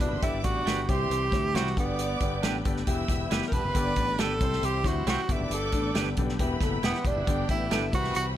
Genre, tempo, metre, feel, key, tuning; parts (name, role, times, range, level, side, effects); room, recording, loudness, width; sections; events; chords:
uptempo 1960s-style soul; 136 BPM; 4/4; straight; G major; A4 = 439 Hz
breathy tenor saxophone; melody; 0.0-8.3 s; B3 to B4; -30 LUFS; right 2 dB
warm studio violin section; second line; 0.0-8.4 s; C4 to E6; -36 LUFS; right 2 dB
warm upright piano; accompaniment; 0.0-8.3 s; D3 to A4; -33 LUFS; left 4 dB
bright tonewheel organ; sustained chords; 0.0-8.4 s; G3 to E4; -40 LUFS; equal; overdrive, chorus vibrato, slow rotary speaker
fingered electric bass; bass; 0.0-8.3 s; E1 to D2; -32 LUFS; equal
warm soul drum kit; drums; 0.0-8.2 s; hi-hat, kick drum, snare drum; -30 LUFS; equal
clean electric guitar; stabs; 0.7-7.8 s; D4 to C5; -35 LUFS; right 9 dB
light reverb; -25 LUFS; side -12 dB against mid
0.0-8.4 A section
0.2 G; 0.9 C; 1.8 G; 2.9 Em; 3.7 G; 4.4 C; 5.3 G; 6.4 Em; 7.3 G